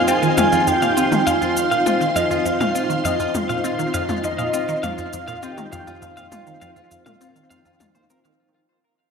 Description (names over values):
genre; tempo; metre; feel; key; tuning
ambient, sequencer-driven space music; 101 BPM; 4/4; straight; unclear; A4 = 440 Hz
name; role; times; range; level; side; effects
pulse-width lead; melody; 0.0-8.1 s; Eb5 to Ab5; -23 LUFS; equal; chorus, tape echo
string machine, full ensemble; sustained chords; 0.0-8.4 s; Eb4 to C6; -23 LUFS; equal; ensemble chorus
clean electric guitar; arpeggios; 0.0-8.2 s; F4 to F5; -27 LUFS; left 1 dB; auto-pan, tape echo
resonant blip pluck; riff; 0.1-8.3 s; F2 to C4; -26 LUFS; right 2 dB; phaser, wide subtle chorus, tape echo
electronic shaker and toms; percussion; 0.1-8.4 s; none; -27 LUFS; left 3 dB; tape echo
room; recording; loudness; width
wet echo chamber reverb, RT60 2.2 s; echo-heavy mix; -17 LUFS; side -6 dB against mid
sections
0.0-8.4 A section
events
fade-out 0.0-8.4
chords
0.0 F7(no3)